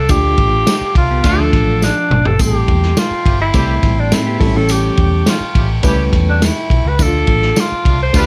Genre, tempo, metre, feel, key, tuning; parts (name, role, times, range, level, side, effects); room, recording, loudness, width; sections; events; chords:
uptempo 1960s-style soul; 104 BPM; 4/4; straight; A4 = 440 Hz
breathy tenor saxophone; melody; 0.0-8.3 s; D4 to C5; -20 LUFS; equal
tonewheel organ; sustained chords; 0.0-8.3 s; A4 to D6; -31 LUFS; equal; stopped rotary speaker
vintage muted fingered electric bass; bass; 0.0-8.3 s; G1 to A2; -19 LUFS; equal
reed electric piano; accompaniment; 0.1-8.3 s; G3 to C5; -23 LUFS; equal; fast tremolo
vintage drum kit; drums; 0.1-8.3 s; hi-hat, kick drum, ride cymbal, snare drum, toms; -18 LUFS; equal
tambourine; percussion; 0.1-8.3 s; -30 LUFS; equal
clear horn section; second line; 1.0-8.3 s; F3 to G4; -27 LUFS; equal
mellow electric guitar; riff; 1.1-5.4 s; E3 to A4; -24 LUFS; equal; phaser
light reverb; -14 LUFS; mono
0.0-8.3 A section
drum fill 1.8-2.4
0.0 Dm; 2.4 Am7; 4.4 A7; 7.0 Dm